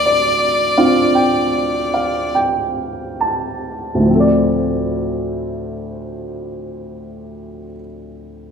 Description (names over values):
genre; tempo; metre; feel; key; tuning
celtic folk, Celtic slow air; 34-43 BPM; 4/4; rubato; D minor; A4 = 440 Hz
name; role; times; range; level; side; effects
bright fiddle; melody; 0.0-2.4 s; D5; -17 LUFS; equal; none
dark upright piano; accompaniment; 0.0-8.5 s; D2 to A5; -17 LUFS; equal; none
room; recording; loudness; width
wet recital hall reverb, RT60 1.6 s; recorded in a church or concert hall; -14 LUFS; side -6 dB against mid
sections
0.0-4.1 A section; 4.1-8.5 B section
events
upright piano fill 0.0-4.1; slowing down 0.0-4.1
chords
0.0 Dm7